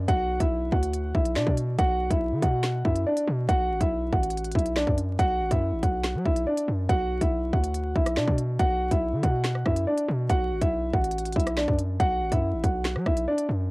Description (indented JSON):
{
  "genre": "hip hop, drill",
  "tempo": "141 BPM",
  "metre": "4/4",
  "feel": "half-time",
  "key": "B minor",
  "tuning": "A4 = 441 Hz",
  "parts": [
    { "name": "hard-hitting 808-style bass", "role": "bass", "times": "0.0-13.7 s", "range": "A1 to F#3", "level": "-28 LUFS", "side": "equal", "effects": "none" },
    { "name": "dark concert grand piano", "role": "melody", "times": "0.1-13.5 s", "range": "D4 to F#5", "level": "-26 LUFS", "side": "equal", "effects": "low-pass filter, cassette tape" },
    { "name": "drill drum kit", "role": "drums", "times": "0.1-13.5 s", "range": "finger snaps, hi-hat, kick drum, rim click, snare drum", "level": "-26 LUFS", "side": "equal", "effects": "cassette tape" }
  ],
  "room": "little or no reverb",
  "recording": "home recording on cassette, vinyl crackle",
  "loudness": "-23 LUFS",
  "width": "side -23 dB against mid",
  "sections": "0.0-13.7 A section",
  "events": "none",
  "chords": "0.0 Bm"
}